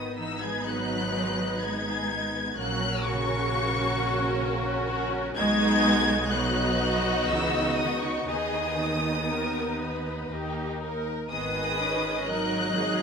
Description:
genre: classical, slow romantic movement for string orchestra.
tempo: 59-65 BPM.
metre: 3/4.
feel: rubato.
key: G# minor.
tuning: A4 = 441 Hz.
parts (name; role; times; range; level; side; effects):
warm studio violin section; melody; 0.0-13.0 s; C#6 to G#6; -30 LUFS; left 3 dB; none.
rich studio violin section; second line; 0.0-13.0 s; G#3 to D#5; -31 LUFS; left 1 dB; none.
rich studio viola section; accompaniment; 0.0-13.0 s; A#3 to B4; -30 LUFS; right 1 dB; none.
warm studio cello section; bass; 0.0-13.0 s; C#3 to G#3; -31 LUFS; right 2 dB; none.
warm studio double bass section; bass; 0.0-13.0 s; G#1 to D#2; -34 LUFS; right 2 dB; none.
room: moderate scoring stage reverb, RT60 1.6 s.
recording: none.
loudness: -24 LUFS.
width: side -6 dB against mid.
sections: 0.0-13.0 A section.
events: none.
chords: 0.0 G#m; 2.6 F#/A#; 5.4 B; 8.3 G#m/D#; 10.3 D#; 11.3 G#m.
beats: 0.67 1.63 | 2.58 3.51 4.43 | 5.36 6.32 7.28 | 8.28 9.28 10.29 | 11.30 12.29.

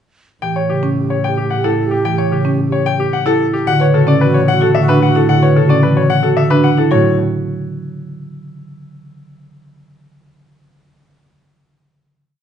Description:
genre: classical, minimalist pattern music.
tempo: 111 BPM.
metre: 3/4.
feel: straight.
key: A mixolydian.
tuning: A4 = 441 Hz.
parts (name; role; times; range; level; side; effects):
bright grand piano; melody; 0.4-7.2 s; G4 to G5; -17 LUFS; left 6 dB; none.
alto flute; second line; 0.4-6.7 s; F#4 to G4; -23 LUFS; right 4 dB; none.
marimba with soft mallets; accompaniment; 0.4-7.2 s; C#3 to F#3; -17 LUFS; equal; none.
warm double bass; bass; 0.4-7.2 s; A2; -21 LUFS; right 3 dB; none.
marimba with medium mallets; arpeggios; 0.6-7.2 s; C#4 to C#5; -19 LUFS; right 4 dB; none.
room: wet large studio reverb, RT60 1.4 s.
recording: nothing above 10.4 kHz.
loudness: -12 LUFS.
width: side -8 dB against mid.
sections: 0.4-6.9 A section; 6.9-8.5 final chord.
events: none.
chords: 0.4 A7; 3.7 Dmaj9/A; 6.9 N.C..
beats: | 0.42 0.96 1.51 | 2.05 2.59 3.13 | 3.67 4.21 4.75 | 5.29 5.83 6.37 | 6.91.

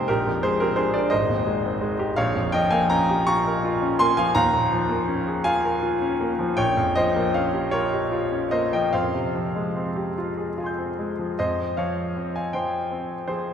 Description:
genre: classical, impressionist solo piano.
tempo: 48-59 BPM (dotted quarters).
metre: 6/8.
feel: rubato.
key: F minor.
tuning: A4 = 440 Hz.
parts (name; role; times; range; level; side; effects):
bright concert grand piano; solo; 0.0-13.5 s; Ab1 to G6; -21 LUFS; equal; none.
room: wet cathedral reverb, RT60 4.5 s.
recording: recorded in a church or concert hall.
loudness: -21 LUFS.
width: side -8 dB against mid.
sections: 0.0-11.4 A section; 11.4-13.5 B section.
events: none.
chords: 0.1 Bb13; 1.1 Abmaj7; 2.2 Bbm6; 4.3 Eb9sus4; 6.6 Bbm6; 8.9 Fmadd9.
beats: | 0.08 1.11 | 2.16 3.26 | 4.35 5.44 | 6.57 7.72 | 8.92 10.16 | 11.37 12.53.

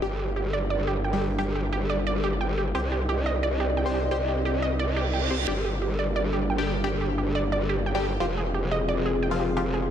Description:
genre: drum and bass.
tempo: 176 BPM.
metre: 4/4.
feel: straight.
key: G phrygian.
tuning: A4 = 440 Hz.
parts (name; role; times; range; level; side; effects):
dark analog pad; sustained chords; 0.0-9.9 s; G3 to Eb5; -30 LUFS; left 1 dB; lush chorus.
wide unison pluck; arpeggios; 0.0-9.9 s; G4 to G5; -30 LUFS; right 4 dB; tape echo.
band-passed chord stab; stabs; 0.0-9.6 s; F3 to C5; -32 LUFS; left 3 dB; phaser, tape echo.
growl bass; bass; 0.0-9.9 s; F1 to C2; -28 LUFS; equal; chorus, tube saturation.
reverse cymbal; sound effects; 4.9-5.5 s; none; -33 LUFS; right 6 dB; none.
room: light reverb, digital ambience.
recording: none.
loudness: -24 LUFS.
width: side -9 dB against mid.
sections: 0.0-9.9 A section.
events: filter sweep on synth stab 0.0-9.9; reverse cymbal 4.9-5.5.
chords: 0.0 Gm; 2.7 Cm; 5.5 Gm; 8.2 Fm.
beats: | 0.02 0.36 0.70 1.04 | 1.39 1.73 2.07 2.41 | 2.75 3.09 3.43 3.77 | 4.11 4.45 4.79 5.13 | 5.48 5.82 6.16 6.50 | 6.84 7.18 7.52 7.86 | 8.20 8.54 8.88 9.23 | 9.57.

